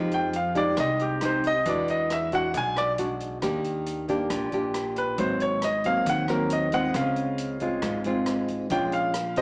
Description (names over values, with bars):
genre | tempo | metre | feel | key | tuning
bossa nova | 136 BPM | 4/4 | straight | F minor | A4 = 440 Hz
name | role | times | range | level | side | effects
nylon-string guitar | accompaniment | 0.0-9.4 s | Ab2 to C5 | -30 LUFS | equal | none
upright bass | bass | 0.0-9.4 s | Ab1 to F2 | -36 LUFS | equal | none
clear baby grand piano | melody | 0.1-9.4 s | G4 to G#5 | -28 LUFS | equal | slapback echo
open jazz drum kit | drums | 0.1-9.4 s | hi-hat, kick drum, rim click | -40 LUFS | equal | slapback echo
room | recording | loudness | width
light reverb | live gig heard through the venue's PA, club reverb, small speaker sound | -26 LUFS | mono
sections
0.0-9.4 A section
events
grand piano solo 0.0-9.4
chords
0.0 Fm9; 1.7 E9; 3.4 Ebmaj7; 5.2 Ab9; 6.9 Dbmaj7; 8.7 Bbm7